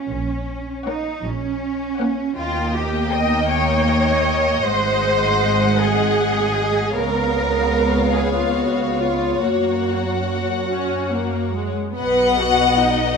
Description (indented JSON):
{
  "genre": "classical, slow romantic movement for string orchestra",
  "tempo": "46-54 BPM (dotted quarters)",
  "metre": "6/8",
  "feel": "rubato",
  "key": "F# major",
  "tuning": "A4 = 441 Hz",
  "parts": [
    { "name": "rich studio cello section", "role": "bass", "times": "0.0-13.2 s", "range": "B2 to D#5", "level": "-22 LUFS", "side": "right 2 dB", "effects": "none" },
    { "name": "rich symphonic double bass section", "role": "bass", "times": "0.1-13.2 s", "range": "G#1 to F#2", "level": "-24 LUFS", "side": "right 4 dB", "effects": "none" },
    { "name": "warm symphonic violin section", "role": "melody", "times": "0.9-13.2 s", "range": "D#5 to G5", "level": "-27 LUFS", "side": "left 7 dB", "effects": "none" },
    { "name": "warm symphonic violin section", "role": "second line", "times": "0.9-13.2 s", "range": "C#5 to F#5", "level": "-24 LUFS", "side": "left 7 dB", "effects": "none" },
    { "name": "warm symphonic viola section", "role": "accompaniment", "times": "0.9-13.2 s", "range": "G#3 to B4", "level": "-23 LUFS", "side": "left 1 dB", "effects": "none" }
  ],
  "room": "light reverb",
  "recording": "none",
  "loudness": "-17 LUFS",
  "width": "side -5 dB against mid",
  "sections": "0.0-12.0 A section; 12.0-13.2 B section",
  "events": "none",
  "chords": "0.1 F#/A#; 2.4 D#7; 4.6 G#7; 6.9 C#7; 9.4 F#; 12.0 B",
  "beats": "| 0.11 1.24 | 2.37 3.51 | 4.63 5.79 | 6.94 8.15 | 9.41 10.70 | 11.98"
}